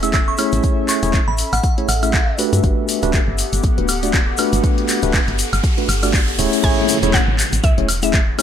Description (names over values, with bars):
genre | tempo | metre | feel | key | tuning
deep house | 120 BPM | 4/4 | swing 57% on 16ths | A major | A4 = 435 Hz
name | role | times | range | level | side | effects
glassy synth bell | melody | 0.0-2.4 s | F#5 to E6 | -26 LUFS | right 2 dB | chorus, dub echo
tine electric piano | stabs | 0.0-8.4 s | A3 to E5 | -21 LUFS | left 1 dB | medium stereo tremolo, sidechain pumping, ping-pong delay
woody FM bass | bass | 0.0-8.3 s | D1 to G2 | -21 LUFS | equal | sidechain pumping
punchy analog drum machine | drums | 0.0-8.4 s | crash cymbal, handclaps, hi-hat, woodblock | -23 LUFS | equal | none
egg shaker | percussion | 0.0-8.4 s | none | -26 LUFS | left 6 dB | none
airy breathy pad | texture | 0.0-6.6 s | B3 to F#5 | -27 LUFS | left 1 dB | chorus, sidechain pumping
electronic kick drum | drums | 0.1-8.3 s | none | -18 LUFS | equal | overdrive
riser and downlifter | sound effects | 4.3-8.4 s | none | -26 LUFS | equal | none
mallet-like synth pluck | melody | 6.6-8.4 s | E5 to G#5 | -26 LUFS | right 1 dB | chorus, dub echo
room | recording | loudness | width
little or no reverb | none | -14 LUFS | side -9 dB against mid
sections
0.0-6.6 A section; 6.6-8.4 B section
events
riser 4.3-6.6; drop 6.6-8.4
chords
0.0 Amaj7; 2.4 Gmaj9; 6.6 Amaj7